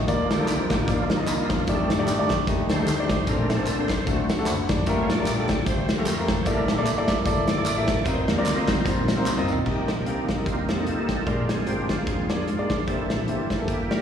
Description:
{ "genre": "uptempo gospel", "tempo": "150 BPM", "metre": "4/4", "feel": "swing 56% on 8ths", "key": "unclear", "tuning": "A4 = 440 Hz", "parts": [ { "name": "modern bright fingered electric bass", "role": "bass", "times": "0.0-14.0 s", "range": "E1 to A2", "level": "-29 LUFS", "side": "equal", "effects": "none" }, { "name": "warm concert grand piano", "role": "accompaniment", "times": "0.1-14.0 s", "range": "G2 to F#5", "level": "-26 LUFS", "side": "left 2 dB", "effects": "slapback echo" }, { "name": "bright tonewheel organ", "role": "sustained chords", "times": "0.1-14.0 s", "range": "Eb3 to D5", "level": "-28 LUFS", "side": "right 3 dB", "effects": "fast rotary speaker, chorus vibrato" }, { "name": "natural country drum kit", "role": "drums", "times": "0.1-14.0 s", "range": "crash cymbal, hi-hat, kick drum, snare drum, toms", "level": "-27 LUFS", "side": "equal", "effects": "slapback echo" }, { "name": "tambourine and handclaps", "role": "percussion", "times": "0.1-9.6 s", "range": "none", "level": "-35 LUFS", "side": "right 4 dB", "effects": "slapback echo" } ], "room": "light reverb", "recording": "live gig heard through the venue's PA, recital hall reverb, studio ambience", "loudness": "-21 LUFS", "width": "side -8 dB against mid", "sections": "0.0-9.7 A section; 9.7-14.0 B section", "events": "tonewheel organ solo 0.0-9.7, 9.7-14.0; drum fill 9.3-9.7", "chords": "0.1 Cm11; 1.7 F13; 3.3 Bbmaj9; 4.1 D7; 4.9 Gm9; 6.5 C13; 8.1 F7sus4; 9.7 Cm7; 10.5 F9sus4; 11.3 Bb7; 12.9 C7", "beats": "| 0.08 0.48 0.88 1.28 | 1.68 2.08 2.48 2.88 | 3.27 3.67 4.07 4.47 | 4.87 5.27 5.67 6.07 | 6.47 6.87 7.26 7.66 | 8.06 8.46 8.86 9.26 | 9.66 10.06 10.46 10.87 | 11.27 11.67 12.07 12.47 | 12.87 13.28 13.68" }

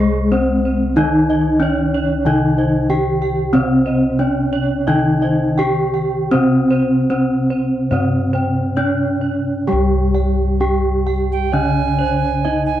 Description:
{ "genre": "gamelan", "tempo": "65-93 BPM", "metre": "4/4", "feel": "straight", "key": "C pelog", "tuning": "A4 = 440 Hz", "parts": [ { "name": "gamelan-type bronze metallophone", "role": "melody", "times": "0.0-12.8 s", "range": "Ab3 to G4", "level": "-18 LUFS", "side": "equal", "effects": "none" }, { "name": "gamelan-type bronze metallophone", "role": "accompaniment", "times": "0.0-12.8 s", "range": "C3 to Ab3", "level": "-21 LUFS", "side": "left 2 dB", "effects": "none" }, { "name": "gamelan-type bossed gongs", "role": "arpeggios", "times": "0.0-12.8 s", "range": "C5 to G5", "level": "-27 LUFS", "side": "left 5 dB", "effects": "none" }, { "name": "gamelan-type bronze metallophone", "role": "arpeggios", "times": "0.0-12.8 s", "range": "Ab4 to G5", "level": "-26 LUFS", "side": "right 4 dB", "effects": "tape echo" }, { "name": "gamelan-type bossed gongs", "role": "bass", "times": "0.0-12.8 s", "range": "C2 to G4", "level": "-21 LUFS", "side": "equal", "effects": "none" }, { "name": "alto recorder", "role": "second line", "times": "11.3-12.8 s", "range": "G5 to Ab5", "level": "-21 LUFS", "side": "right 12 dB", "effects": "none" } ], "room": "little or no reverb", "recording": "dry, close 1970s-style studio recording", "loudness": "-14 LUFS", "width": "side -12 dB against mid", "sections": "0.0-9.7 A section; 9.7-12.8 B section", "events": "none", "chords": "none", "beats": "0.31 | 0.96 1.60 2.24 2.89 | 3.53 4.19 4.87 5.58 | 6.32 7.10 7.92 8.77 | 9.67 10.60 11.53 12.45" }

